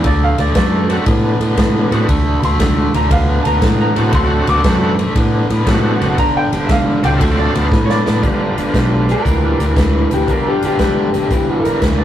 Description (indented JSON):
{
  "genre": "electric blues shuffle",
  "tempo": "117 BPM",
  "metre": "4/4",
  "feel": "swing 67% on 8ths",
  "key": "G mixolydian",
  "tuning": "A4 = 438 Hz",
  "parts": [
    { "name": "overdriven electric guitar", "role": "riff", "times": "0.0-12.0 s", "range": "G2 to B3", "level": "-19 LUFS", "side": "equal", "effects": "tremolo" },
    { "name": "fingered electric bass", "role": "bass", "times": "0.0-12.0 s", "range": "F#1 to A2", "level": "-17 LUFS", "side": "equal", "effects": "none" },
    { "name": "swinging big-band drum kit", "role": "drums", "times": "0.0-12.0 s", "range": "hi-hat, kick drum, ride cymbal, snare drum", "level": "-17 LUFS", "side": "equal", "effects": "none" },
    { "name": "bright upright piano", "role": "second line", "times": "0.1-8.2, 11.6-12.0 s", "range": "A4 to D6", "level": "-21 LUFS", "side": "equal", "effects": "none" },
    { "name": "bright tonewheel organ", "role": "accompaniment", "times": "0.9-11.1 s", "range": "F3 to F#4", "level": "-21 LUFS", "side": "right 2 dB", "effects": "slow rotary speaker, overdrive" },
    { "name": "electric slide guitar", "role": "melody", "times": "9.1-11.6 s", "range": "G4 to Bb4", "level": "-19 LUFS", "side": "left 5 dB", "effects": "none" }
  ],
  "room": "moderate booth ambience, RT60 0.2 s",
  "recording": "rough rehearsal-room recording, tube saturation",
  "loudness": "-12 LUFS",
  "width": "side -11 dB against mid",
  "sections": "0.0-8.2 A section; 8.2-12.0 B section",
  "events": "upright piano solo 0.0-8.2; drum fill 7.7-8.2",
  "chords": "0.0 D7; 6.2 G5; 7.2 D7; 8.2 G7"
}